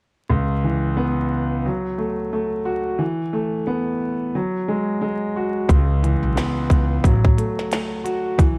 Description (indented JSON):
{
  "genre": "hip hop, boom-bap hip-hop",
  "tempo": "89 BPM",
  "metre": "4/4",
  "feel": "swing 59% on 16ths",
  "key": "unclear",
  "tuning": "A4 = 440 Hz",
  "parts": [
    { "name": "dark grand piano", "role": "accompaniment", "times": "0.3-8.6 s", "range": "C#2 to F#4", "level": "-24 LUFS", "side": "equal", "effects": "none" },
    { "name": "upright bass", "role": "bass", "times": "5.7-8.6 s", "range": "A1 to C#2", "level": "-23 LUFS", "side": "equal", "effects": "none" },
    { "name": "minimal click drum kit", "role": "drums", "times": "5.7-8.6 s", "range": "hi-hat, kick drum, snare drum", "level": "-20 LUFS", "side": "equal", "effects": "none" }
  ],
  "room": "light reverb, small room reverb",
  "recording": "vinyl crackle",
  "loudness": "-21 LUFS",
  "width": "mono",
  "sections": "0.3-8.6 A section",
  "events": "none",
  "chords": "0.3 C#m7; 1.6 F#m; 3.0 B7sus4; 4.3 F#sus2; 5.7 C#m7; 7.0 F#m/A"
}